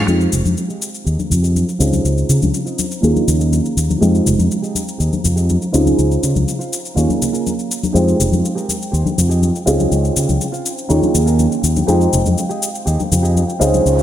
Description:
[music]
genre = filtered disco house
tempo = 122 BPM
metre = 4/4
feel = straight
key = F minor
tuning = A4 = 441 Hz
[part]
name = warm grand piano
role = accompaniment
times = 0.0-14.0 s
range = Ab3 to G5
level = -19 LUFS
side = right 1 dB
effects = phaser, low-pass filter
[part]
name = rich studio violin section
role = sustained chords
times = 0.0-14.0 s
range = G5 to Bb5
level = -34 LUFS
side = left 3 dB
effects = vintage 12-bit sampler grit, low-pass filter
[part]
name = clean electric guitar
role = riff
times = 0.0-14.0 s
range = F4 to F5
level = -29 LUFS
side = right 5 dB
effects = vintage 12-bit sampler grit, low-pass filter
[part]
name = fuzz fingered electric bass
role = bass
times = 0.0-14.0 s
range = F1 to Db3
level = -16 LUFS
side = equal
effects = overdrive, low-pass filter
[part]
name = shaker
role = drums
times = 0.1-14.0 s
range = none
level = -24 LUFS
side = left 4 dB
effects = overdrive
[part]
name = tambourine and congas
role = percussion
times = 0.1-14.0 s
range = none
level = -23 LUFS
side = left 3 dB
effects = low-pass filter on perc
[part]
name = noise sweep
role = sound effects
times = 13.9-14.0 s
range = none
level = -27 LUFS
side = right 1 dB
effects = none
[sound]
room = moderate lush hall reverb, RT60 1.8 s, digital ambience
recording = bright 1980s-style digital production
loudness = -14 LUFS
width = side -11 dB against mid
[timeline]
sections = 0.1-14.0 A section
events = filter sweep 0.1-14.0; noise sweep 13.9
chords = 0.1 Fm9; 1.8 Dbmaj9; 3.0 Eb9sus4; 4.0 Fm9; 5.7 Dbmaj9; 7.0 Eb9sus4; 8.0 Fm9; 9.7 Dbmaj9; 10.9 Eb9sus4; 11.9 Fm9

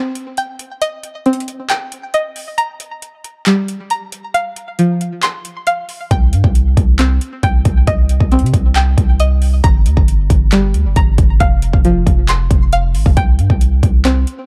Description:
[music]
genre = hip hop, trap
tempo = 136 BPM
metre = 4/4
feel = half-time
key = C minor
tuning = A4 = 439 Hz
[part]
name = string-like resonator pluck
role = arpeggios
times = 0.0-14.5 s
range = F3 to C6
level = -20 LUFS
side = equal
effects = chorus, delay
[part]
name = dubstep drum kit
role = drums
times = 0.2-14.4 s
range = handclaps, hi-hat, kick drum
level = -17 LUFS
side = equal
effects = overdrive
[part]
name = long sustained 808-style bass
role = bass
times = 6.1-14.3 s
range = F1 to C3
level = -16 LUFS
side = equal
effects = none
[sound]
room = little or no reverb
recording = dark, warm production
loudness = -14 LUFS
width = mono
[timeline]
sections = 0.0-14.5 A section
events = break 0.0-6.1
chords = 0.0 Cm; 2.6 Gm; 4.3 F5; 6.1 Cm; 9.6 Gm; 11.4 F5; 13.2 C5

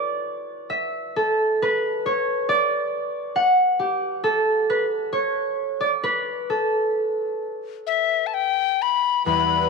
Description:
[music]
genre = celtic folk, Celtic slow air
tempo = 43-46 BPM (dotted quarters)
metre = 6/8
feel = rubato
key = unclear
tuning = A4 = 436 Hz
[part]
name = concert harp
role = accompaniment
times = 0.0-9.7 s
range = E2 to F#5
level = -21 LUFS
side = right 1 dB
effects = none
[part]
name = breathy mellow tin whistle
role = melody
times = 7.9-9.7 s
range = E5 to B5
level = -19 LUFS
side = left 12 dB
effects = none
[part]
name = musette accordion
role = sustained chords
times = 9.3-9.7 s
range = G3 to B4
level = -26 LUFS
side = right 3 dB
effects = none
[sound]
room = moderate plate reverb, RT60 2.9 s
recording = none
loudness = -20 LUFS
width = side -4 dB against mid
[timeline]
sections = 0.0-9.3 A section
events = harp solo 0.0-9.3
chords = none

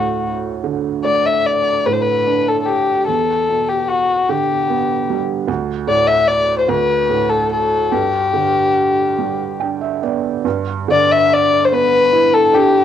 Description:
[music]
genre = celtic folk, Celtic slow air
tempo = 49 BPM (dotted quarters)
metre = 6/8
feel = rubato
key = G major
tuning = A4 = 436 Hz
[part]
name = dark fiddle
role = melody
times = 0.0-12.8 s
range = F#4 to E5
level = -14 LUFS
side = left 4 dB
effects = cassette tape
[part]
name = felt-muted upright piano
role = accompaniment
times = 0.0-12.8 s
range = D2 to G5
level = -20 LUFS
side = right 10 dB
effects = cassette tape
[sound]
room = moderate studio reverb, RT60 0.6 s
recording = home recording on cassette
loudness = -14 LUFS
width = side -9 dB against mid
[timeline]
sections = 0.0-10.5 A section; 10.5-12.8 A section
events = felt piano fill 9.2-10.5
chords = 0.0 D5; 3.1 Em7; 5.5 D5; 7.9 G

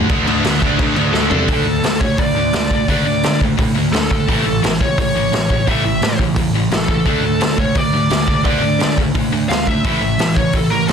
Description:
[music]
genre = punk rock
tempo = 172 BPM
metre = 4/4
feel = straight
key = unclear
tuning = A4 = 440 Hz
[part]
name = distorted electric guitar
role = riff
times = 0.0-10.9 s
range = A2 to D4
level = -21 LUFS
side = right 13 dB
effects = distortion
[part]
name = sludgy distorted guitar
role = riff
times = 0.0-10.9 s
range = A2 to D4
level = -22 LUFS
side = left 14 dB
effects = overdrive
[part]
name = sludgy distorted guitar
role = riff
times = 0.0-1.5 s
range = D3 to D4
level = -22 LUFS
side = equal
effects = overdrive
[part]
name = growling picked electric bass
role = bass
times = 0.0-10.9 s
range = A1 to D3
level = -22 LUFS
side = equal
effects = overdrive
[part]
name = raw garage drum kit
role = drums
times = 0.1-10.9 s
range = crash cymbal, hi-hat, kick drum, snare drum, toms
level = -18 LUFS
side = equal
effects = none
[part]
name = bluesy overdriven lead guitar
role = melody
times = 1.1-10.9 s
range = A4 to F5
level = -20 LUFS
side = equal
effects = distortion
[sound]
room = little or no reverb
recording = dense, heavily limited modern master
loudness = -14 LUFS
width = side -7 dB against mid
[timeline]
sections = 0.1-1.5 A section; 1.5-10.9 B section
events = drum fill 1.1-1.5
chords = 0.1 D5; 4.3 A; 7.1 D5; 9.9 A5

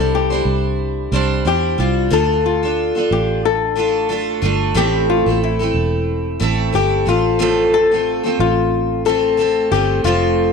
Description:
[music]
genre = pop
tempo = 91 BPM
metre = 4/4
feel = swing 55% on 16ths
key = F major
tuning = A4 = 443 Hz
[part]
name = flamenco guitar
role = melody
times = 0.0-10.5 s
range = E4 to A4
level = -18 LUFS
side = left 10 dB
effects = slapback echo
[part]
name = picked steel-string acoustic guitar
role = accompaniment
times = 0.0-10.5 s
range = A2 to C5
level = -19 LUFS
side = right 2 dB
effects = double-tracked left and right
[part]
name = fingered electric bass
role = bass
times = 0.0-10.5 s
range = E1 to E2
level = -21 LUFS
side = right 3 dB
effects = none
[sound]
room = light reverb, small room reverb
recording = none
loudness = -14 LUFS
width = side -5 dB against mid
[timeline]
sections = 0.0-10.5 A section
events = none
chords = 0.0 Cadd9; 2.1 Dm; 4.8 Am; 7.1 F/A

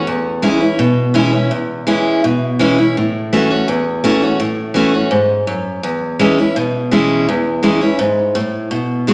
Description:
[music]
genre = rock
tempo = 166 BPM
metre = 4/4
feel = straight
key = E major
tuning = A4 = 440 Hz
[part]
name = picked steel-string acoustic guitar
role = solo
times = 0.0-9.1 s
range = E2 to F#4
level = -16 LUFS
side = equal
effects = none
[sound]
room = wet large studio reverb, RT60 1.5 s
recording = none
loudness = -15 LUFS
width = mono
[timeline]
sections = 0.0-9.1 A section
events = none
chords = 0.1 E6; 3.0 A6; 5.8 E6

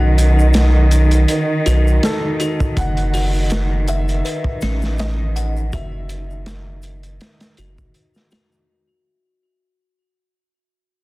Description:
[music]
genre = trip hop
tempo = 81 BPM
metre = 4/4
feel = swing 54% on 16ths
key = F# dorian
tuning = A4 = 440 Hz
[part]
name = felt-muted upright piano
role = melody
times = 0.0-7.9 s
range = A4 to F#5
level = -30 LUFS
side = left 1 dB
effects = tape echo
[part]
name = rich studio string section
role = sustained chords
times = 0.0-8.7 s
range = D#3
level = -22 LUFS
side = right 1 dB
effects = none
[part]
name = music box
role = arpeggios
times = 0.0-8.7 s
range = C#4 to F#5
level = -30 LUFS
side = left 3 dB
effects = tape echo
[part]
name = soft dub sub bass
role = bass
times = 0.0-7.9 s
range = F#1 to B1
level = -16 LUFS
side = equal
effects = tube saturation
[part]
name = crunchy breakbeat drum kit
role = drums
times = 0.2-8.5 s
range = hi-hat, kick drum, snare drum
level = -24 LUFS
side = equal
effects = none
[part]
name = tube shaker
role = percussion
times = 0.2-8.7 s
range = none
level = -38 LUFS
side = left 1 dB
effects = none
[sound]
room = small room reverb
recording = dense, heavily limited modern master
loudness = -14 LUFS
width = side -20 dB against mid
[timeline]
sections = 0.0-8.7 A section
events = fade-out 0.8-8.7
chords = 0.0 B7; 2.8 F#m7

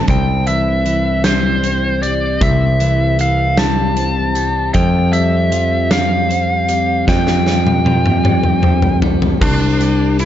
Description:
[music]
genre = post-rock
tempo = 51 BPM (dotted quarters)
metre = 6/8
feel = straight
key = unclear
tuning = A4 = 443 Hz
[part]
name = biting lead guitar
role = melody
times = 0.0-10.3 s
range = D4 to A5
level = -18 LUFS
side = equal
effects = overdrive
[part]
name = twelve-string electric guitar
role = arpeggios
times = 0.0-10.3 s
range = C3 to C4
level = -20 LUFS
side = left 3 dB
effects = digital delay
[part]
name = modern bright picked electric bass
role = bass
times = 0.1-10.3 s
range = C2 to F2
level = -17 LUFS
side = equal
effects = none
[part]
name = big rock drum kit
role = drums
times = 0.1-10.3 s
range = crash cymbal, hi-hat, kick drum, snare drum, toms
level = -18 LUFS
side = equal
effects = none
[sound]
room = light reverb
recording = nothing above 7.6 kHz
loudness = -12 LUFS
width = side -11 dB against mid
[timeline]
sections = 0.1-9.4 A section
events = drum fill 7.1-9.4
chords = 0.1 C; 4.7 Fsus2; 9.4 Csus2

